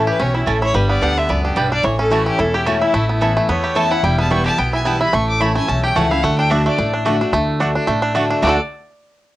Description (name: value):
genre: bluegrass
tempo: 219 BPM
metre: 4/4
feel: swing 55% on 8ths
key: D major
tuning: A4 = 441 Hz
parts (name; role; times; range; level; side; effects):
- clear fiddle; melody; 0.0-8.6 s; E4 to D6; -21 LUFS; equal; none
- picked steel-string acoustic guitar; accompaniment; 0.0-8.6 s; E2 to G4; -22 LUFS; left 3 dB; cassette tape
- bluegrass banjo; arpeggios; 0.0-8.6 s; D3 to A4; -20 LUFS; right 2 dB; cassette tape
- mandolin; stabs; 0.0-8.6 s; A3 to B5; -22 LUFS; right 4 dB; cassette tape
- upright bass; bass; 0.0-8.6 s; E1 to E2; -21 LUFS; equal; none
room: light reverb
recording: home recording on cassette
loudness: -14 LUFS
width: side -16 dB against mid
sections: 0.0-7.3 A section; 7.3-8.4 B section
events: none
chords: 0.0 A; 0.7 G; 1.8 A; 2.9 Aadd9; 4.0 Em; 5.1 A; 6.2 D